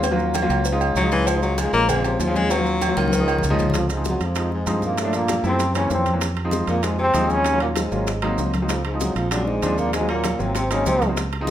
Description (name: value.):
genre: Afro-Cuban jazz.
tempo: 194 BPM.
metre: 4/4.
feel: straight.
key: Db major.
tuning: A4 = 440 Hz.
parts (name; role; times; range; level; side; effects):
warm concert grand piano; accompaniment; 0.0-11.5 s; Fb3 to F4; -24 LUFS; equal; none.
fingered electric bass; bass; 0.0-11.5 s; Ab1 to G2; -25 LUFS; right 1 dB; none.
agogo bells and timbales; percussion; 0.0-11.5 s; none; -30 LUFS; right 7 dB; none.
congas; percussion; 0.0-11.5 s; none; -29 LUFS; left 2 dB; none.
cowbell and bongos; percussion; 0.0-11.5 s; none; -32 LUFS; left 5 dB; none.
maracas; percussion; 0.0-11.5 s; none; -35 LUFS; right 7 dB; none.
warm baritone saxophone; second line; 1.0-11.1 s; F2 to Bb3; -26 LUFS; left 2 dB; none.
clear trombone; melody; 3.8-11.1 s; F3 to Db4; -24 LUFS; right 1 dB; none.
room: moderate large studio reverb, RT60 0.9 s.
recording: minimal, uncompressed stereo recording.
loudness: -18 LUFS.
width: side -11 dB against mid.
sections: 0.0-3.7 A section; 3.7-11.5 B section.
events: baritone saxophone solo 0.0-3.7; drum fill 3.0-3.7.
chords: 0.0 Ebm7; 0.7 Dbadd9; 1.9 Bbm7; 2.5 Ebm7; 3.1 Dbadd9; 3.7 Dbmaj7; 5.0 Gm7; 5.6 Gb7#11; 6.2 Fm7; 7.5 Ebm7; 8.1 Ab7; 8.7 Dbmaj7; 9.3 Bb7; 9.9 Ebm7; 10.6 Ab7.